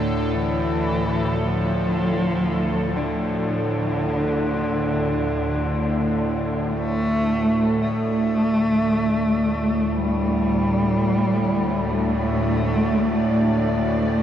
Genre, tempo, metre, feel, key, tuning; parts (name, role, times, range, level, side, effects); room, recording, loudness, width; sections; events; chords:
dark ambient drone; free time; D minor; A4 = 444 Hz
warm cello; melody; 0.0-13.7 s; D3 to A3; -22 LUFS; equal; tape echo
tubular bells; arpeggios; 0.0-14.2 s; D4 to F4; -38 LUFS; left 2 dB
bowed-like drone; drone; 0.0-14.2 s; D2 to A2; -23 LUFS; equal; built-in reverb
bubbling stepped-filter texture; texture; 0.0-7.9 s; A4; -32 LUFS; right 2 dB; chorus, built-in reverb
warm studio cello section; sustained chords; 7.8-14.2 s; A2 to D5; -31 LUFS; right 1 dB
wet huge ambient reverb, RT60 7.8 s; dark, warm production; -19 LUFS; side -10 dB against mid
0.0-7.8 A section; 7.8-14.2 B section
fade-in on cello section 7.8-14.2
0.0 D5